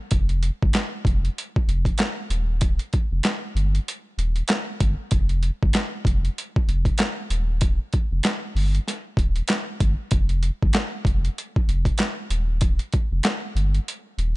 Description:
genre	hip hop, boom-bap hip-hop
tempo	96 BPM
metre	4/4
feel	swing 60% on 16ths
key	unclear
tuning	A4 = 438 Hz
part	saturated sub bass	bass	0.1-14.4 s	Eb1 to G1	-22 LUFS	equal	none
part	boom bap sampler-style drum kit	drums	0.1-14.4 s	handclaps, hi-hat, kick drum, snare drum	-22 LUFS	equal	overdrive
room	little or no reverb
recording	nothing above 10.9 kHz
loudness	-21 LUFS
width	side -20 dB against mid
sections	0.1-14.4 A section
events	none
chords	none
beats	| 0.12 0.74 1.36 1.99 | 2.62 3.24 3.87 4.49 | 5.12 5.74 6.37 6.99 | 7.62 8.24 8.87 9.49 | 10.12 10.74 11.37 11.99 | 12.62 13.24 13.87

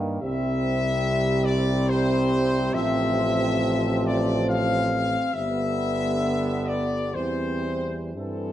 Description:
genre	classical, hymn-like piece for brass band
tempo	58-75 BPM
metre	3/4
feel	rubato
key	C major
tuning	A4 = 440 Hz
part	mellow French horn section	second line	0.0-8.5 s	Bb3 to C4	-28 LUFS	right 4 dB	none
part	clear trombone	accompaniment	0.0-8.5 s	C3 to E3	-33 LUFS	right 3 dB	none
part	warm euphonium	accompaniment	0.0-8.5 s	F3 to G3	-30 LUFS	left 1 dB	none
part	mellow tuba	bass	0.0-8.5 s	G1 to G2	-28 LUFS	equal	none
part	clear trumpet section	melody	0.2-8.5 s	A4 to F5	-27 LUFS	left 4 dB	none
room	wet recital hall reverb, RT60 1.3 s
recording	worn, warbling old tape, cassette tape, warbly pitch drift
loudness	-22 LUFS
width	side -12 dB against mid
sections	0.0-8.5 A section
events	none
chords	0.2 C; 2.7 F/A; 5.3 G; 7.2 C/E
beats	| 0.23 1.04 1.89 | 2.74 3.63 4.49 | 5.34 6.21 7.16 | 8.16

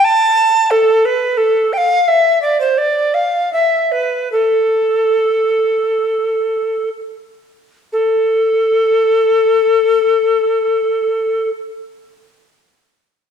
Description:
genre	classical, baroque-style fantasia for unaccompanied recorder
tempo	60-90 BPM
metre	4/4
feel	rubato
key	unclear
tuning	A4 = 443 Hz
part	tenor recorder	solo	0.0-11.5 s	A4 to A5	-12 LUFS	equal	none
room	wet stone room reverb, RT60 1.4 s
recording	heard from further back in the room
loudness	-12 LUFS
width	side -7 dB against mid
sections	0.0-7.9 A section; 7.9-11.9 B section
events	slowing down 0.0-7.9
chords	none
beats	0.04 0.71 | 1.39 2.08 2.79 3.54 | 4.33 5.15 6.02 6.94 | 7.92 8.92 9.91 10.91

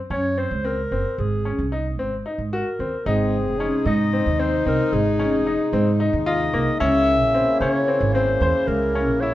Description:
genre	contemporary instrumental, chamber music in an uneven meter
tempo	224 BPM (eighths)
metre	7/8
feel	straight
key	unclear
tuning	A4 = 440 Hz
part	mellow clarinet	melody	0.1-9.3 s	Ab4 to Fb5	-23 LUFS	equal	none
part	bright grand piano	arpeggios	0.1-9.3 s	Bb3 to C5	-25 LUFS	left 2 dB	none
part	upright bass	bass	0.1-9.3 s	F1 to Db3	-24 LUFS	right 2 dB	none
part	warm French horn	second line	3.1-9.3 s	C4 to Eb4	-25 LUFS	left 4 dB	none
part	hand-pumped harmonium	sustained chords	3.1-9.3 s	C3 to Fb4	-30 LUFS	left 2 dB	none
room	moderate recital hall reverb, RT60 1.4 s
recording	none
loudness	-19 LUFS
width	side -14 dB against mid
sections	0.0-3.1 A section; 3.1-9.3 B section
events	none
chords	0.0 Gb; 1.2 Ab; 6.8 Dbm6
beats	0.10 0.37 0.64 0.91 | 1.18 1.45 1.72 1.99 2.25 2.52 2.79 | 3.06 3.33 3.60 3.86 4.13 4.40 4.67 | 4.93 5.20 5.47 5.74 6.00 6.27 6.54 | 6.81 7.07 7.34 7.61 7.88 8.14 8.41 | 8.68 8.95 9.21

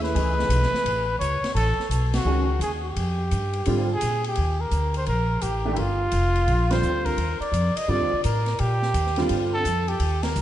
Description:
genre	modal jazz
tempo	171 BPM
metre	4/4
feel	swing 65% on 8ths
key	Eb lydian from 4.4 s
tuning	A4 = 441 Hz
part	breathy trumpet	melody	0.0-10.4 s	Fb4 to Eb5	-26 LUFS	equal	tape echo
part	warm concert grand piano	accompaniment	0.0-9.6 s	D3 to G#4	-29 LUFS	right 1 dB	ensemble chorus
part	upright bass	bass	0.0-10.4 s	F1 to A#2	-24 LUFS	equal	none
part	open jazz drum kit	drums	0.0-10.4 s	hi-hat, kick drum, ride cymbal, snare drum	-34 LUFS	left 2 dB	none
room	moderate plate reverb, RT60 2.2 s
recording	dreamy mix soaked in reverb, nothing above 10.9 kHz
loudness	-21 LUFS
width	side -12 dB against mid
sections	0.0-4.4 A section; 4.4-10.4 B section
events	band accent 2.1, 6.7, 10.2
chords	0.0 Amaj9; 3.0 A#13; 4.4 Ebmaj9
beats	| 0.15 0.51 0.86 1.21 | 1.56 1.91 2.26 2.62 | 2.97 3.32 3.67 4.02 | 4.37 4.72 5.08 5.43 | 5.78 6.13 6.48 6.83 | 7.19 7.54 7.89 8.24 | 8.60 8.95 9.30 9.65 | 10.00 10.35

